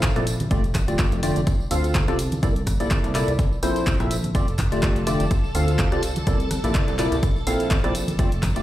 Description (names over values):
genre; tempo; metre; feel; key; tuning
piano house; 125 BPM; 4/4; swing 55% on 16ths; unclear; A4 = 440 Hz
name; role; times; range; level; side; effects
percussive organ stab; riff; 0.0-8.6 s; Bb2 to F5; -25 LUFS; equal; analog chorus, sidechain pumping, dub echo
plucky analog bass; bass; 0.0-8.6 s; D1 to D2; -26 LUFS; equal; sidechain pumping
electronic kick drum; drums; 0.0-8.5 s; none; -22 LUFS; equal; overdrive
punchy analog drum machine; drums; 0.0-8.6 s; handclaps, hi-hat, rim click; -30 LUFS; left 1 dB; overdrive
tambourine and congas; percussion; 0.0-8.6 s; none; -34 LUFS; right 2 dB; none
string machine, violins; sustained chords; 4.3-8.6 s; A4 to A5; -33 LUFS; equal; ensemble chorus, sidechain pumping
room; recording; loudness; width
light reverb, digital ambience; played on a big sound system in a bare room, large studio reverb; -19 LUFS; side -14 dB against mid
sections
0.0-8.6 A section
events
none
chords
0.0 Bbmaj9#11; 0.5 F69; 1.5 Dm7; 2.2 C13; 3.4 Bbsus2; 4.3 F69; 5.3 Dm7; 6.0 C13; 7.2 Bbmaj9#11